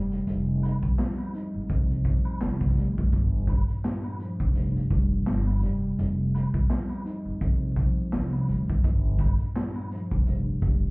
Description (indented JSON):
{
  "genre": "hip hop, boom-bap hip-hop",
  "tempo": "84 BPM",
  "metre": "4/4",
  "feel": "swing 55% on 16ths",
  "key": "unclear",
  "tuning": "A4 = 441 Hz",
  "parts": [
    { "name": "mellow tine electric piano", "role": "accompaniment", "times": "0.0-10.9 s", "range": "F2 to Eb4", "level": "-31 LUFS", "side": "equal", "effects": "high-pass filter, low-pass filter" },
    { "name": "upright bass", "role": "bass", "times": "0.0-10.9 s", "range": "F1 to D2", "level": "-27 LUFS", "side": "equal", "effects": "none" },
    { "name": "raw garage drum kit", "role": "drums", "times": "0.1-10.8 s", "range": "handclaps, hi-hat, kick drum, snare drum", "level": "-26 LUFS", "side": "equal", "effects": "none" },
    { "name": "egg shaker and woodblock", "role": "percussion", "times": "0.3-10.8 s", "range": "none", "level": "-47 LUFS", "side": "right 1 dB", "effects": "none" }
  ],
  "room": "little or no reverb",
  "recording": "heard muffled through a wall, club reverb, vinyl crackle, EQ",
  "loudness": "-23 LUFS",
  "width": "side -29 dB against mid",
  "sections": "0.0-10.9 A section",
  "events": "none",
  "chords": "0.0 Fm9; 3.1 Gm7; 5.6 Fm9; 8.8 Gm7"
}